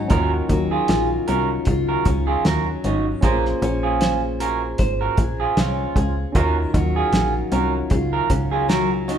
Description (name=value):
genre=indie pop, bedroom pop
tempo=77 BPM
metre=4/4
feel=swing 55% on 16ths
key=Eb dorian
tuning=A4 = 439 Hz
part: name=barky tine electric piano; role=accompaniment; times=0.0-9.2 s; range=Db4 to C5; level=-29 LUFS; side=right 1 dB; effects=overdrive
part: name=nylon-string guitar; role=accompaniment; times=0.0-9.2 s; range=Ab2 to C5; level=-26 LUFS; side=left 4 dB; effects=warbly pitch drift
part: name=electric guitar through a small old amp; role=second line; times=0.1-9.2 s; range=Db4 to Bb4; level=-24 LUFS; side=right 6 dB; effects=none
part: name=plucky analog bass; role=bass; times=0.1-9.2 s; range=Ab1 to Eb2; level=-23 LUFS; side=equal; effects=none
part: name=cloth-damped thuddy drum kit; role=drums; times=0.1-9.2 s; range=hi-hat, kick drum, snare drum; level=-22 LUFS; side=equal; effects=none
room=moderate large studio reverb, RT60 1.1 s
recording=band playing live in one room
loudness=-18 LUFS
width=side -8 dB against mid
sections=0.1-9.2 A section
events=none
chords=0.1 Ebm9; 3.2 Bbm9; 6.4 Ebm9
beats=| 0.11 0.89 1.67 2.45 | 3.23 4.01 4.79 5.57 | 6.35 7.13 7.91 8.69